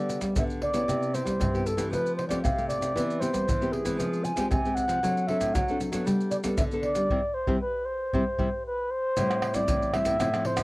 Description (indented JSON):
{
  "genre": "samba and choro",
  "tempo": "116 BPM",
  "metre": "4/4",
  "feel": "straight",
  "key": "C major",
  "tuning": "A4 = 438 Hz",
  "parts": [
    { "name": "reedy baroque flute", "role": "melody", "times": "0.0-10.6 s", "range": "Ab4 to Ab5", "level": "-28 LUFS", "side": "equal", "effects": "none" },
    { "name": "nylon-string guitar", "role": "accompaniment", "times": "0.0-10.6 s", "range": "G2 to A4", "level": "-30 LUFS", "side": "left 1 dB", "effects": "none" },
    { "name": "nylon-string guitar", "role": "bass", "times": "0.0-10.6 s", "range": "A2 to G3", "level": "-32 LUFS", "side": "right 1 dB", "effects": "none" },
    { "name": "maracas, pandeiro, surdo and tamborim", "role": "percussion", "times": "0.1-10.6 s", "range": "none", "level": "-31 LUFS", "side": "equal", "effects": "none" }
  ],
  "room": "moderate booth ambience, RT60 0.2 s",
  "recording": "home recording on cassette",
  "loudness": "-24 LUFS",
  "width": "side -22 dB against mid",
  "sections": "0.0-9.2 A section; 9.2-10.6 B section",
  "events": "band accent 7.1-9.2; drum fill 8.5-9.2",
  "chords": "0.0 G; 0.9 Cmaj7; 1.9 Fadd9; 3.0 Cmaj7/E; 4.0 Fmadd9; 5.0 D7; 6.1 Gadd9; 7.1 C; 9.2 Am7"
}